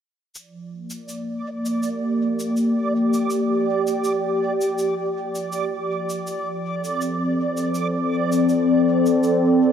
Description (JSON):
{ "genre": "ambient dub", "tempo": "81 BPM", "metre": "4/4", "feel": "swing 54% on 16ths", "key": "unclear", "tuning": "A4 = 438 Hz", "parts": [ { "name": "warm analog pad", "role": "sustained chords", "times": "0.3-9.7 s", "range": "F3 to D5", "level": "-20 LUFS", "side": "equal", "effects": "wide subtle chorus" }, { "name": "cabasa", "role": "drums", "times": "0.4-9.4 s", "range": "none", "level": "-39 LUFS", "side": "equal", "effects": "none" }, { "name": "backwards swelling texture", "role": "texture", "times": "1.1-9.7 s", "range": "D5", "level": "-28 LUFS", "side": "right 3 dB", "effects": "built-in reverb" } ], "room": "wet huge ambient reverb, RT60 4.7 s", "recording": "dreamy mix soaked in reverb", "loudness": "-20 LUFS", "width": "side -8 dB against mid", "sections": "0.3-9.7 A section", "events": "filter sweep on analog synth pad 0.3-9.7", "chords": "0.3 Bb6; 6.3 Dm7" }